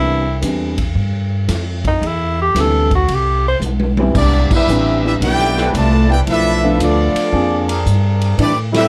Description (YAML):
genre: jazz, big band swing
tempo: 113 BPM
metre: 4/4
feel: swing 67% on 8ths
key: C major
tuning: A4 = 440 Hz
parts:
  - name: mellow tenor saxophone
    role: melody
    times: 0.0-3.6 s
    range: Eb4 to C5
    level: -19 LUFS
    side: equal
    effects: none
  - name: warm grand piano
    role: accompaniment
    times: 0.0-7.7 s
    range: E3 to Ab4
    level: -21 LUFS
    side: equal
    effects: none
  - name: upright bass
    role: bass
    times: 0.0-8.9 s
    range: A1 to A2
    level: -20 LUFS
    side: equal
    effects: none
  - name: swinging big-band drum kit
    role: drums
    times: 0.4-8.8 s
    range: crash cymbal, hi-hat, kick drum, ride cymbal, snare drum, toms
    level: -24 LUFS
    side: equal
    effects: none
  - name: clear trumpet section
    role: melody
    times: 4.2-8.9 s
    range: B3 to A5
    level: -21 LUFS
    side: equal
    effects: none
  - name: bright trombone section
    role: second line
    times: 4.2-8.9 s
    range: E3 to G4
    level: -21 LUFS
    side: equal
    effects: none
  - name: muted trombone section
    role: sustained chords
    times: 5.6-8.4 s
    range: E3 to B4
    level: -27 LUFS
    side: equal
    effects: none
room: light reverb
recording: none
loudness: -16 LUFS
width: mono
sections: 0.0-4.1 A section; 4.1-8.9 B section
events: tenor saxophone solo 0.0-4.1; drum fill 3.6-4.1; band accent 4.4, 8.7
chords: 0.0 Cmaj9; 6.3 Bm7b5; 7.3 Bb9